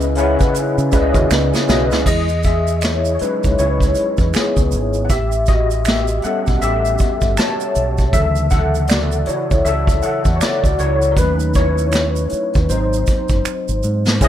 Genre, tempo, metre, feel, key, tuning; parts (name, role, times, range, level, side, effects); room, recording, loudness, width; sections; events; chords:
R&B, neo-soul; 79 BPM; 4/4; swing 60% on 16ths; A4 = 441 Hz
overdriven tine electric piano; accompaniment; 0.0-14.3 s; C#3 to A5; -18 LUFS; left 2 dB; ensemble chorus
deep dub fingered electric bass; bass; 0.0-14.3 s; F#1 to C#3; -19 LUFS; right 1 dB
tube shaker and finger snaps; percussion; 0.0-14.3 s; -29 LUFS; right 12 dB
vintage brush drum kit; drums; 0.1-14.3 s; crash cymbal, hi-hat, kick drum, snare drum; -18 LUFS; right 1 dB
hollow-body jazz guitar; second line; 0.9-2.3 s; G#3 to E5; -23 LUFS; right 15 dB
light reverb; -14 LUFS; side -11 dB against mid
0.0-2.1 A section; 2.1-14.2 B section
drum fill 1.3-2.1, 13.5-14.2; tine electric piano solo 2.1-14.2
0.0 C#m9; 2.1 E6; 5.1 A7; 8.1 Dmaj9; 11.2 D#m7b5; 12.7 G#7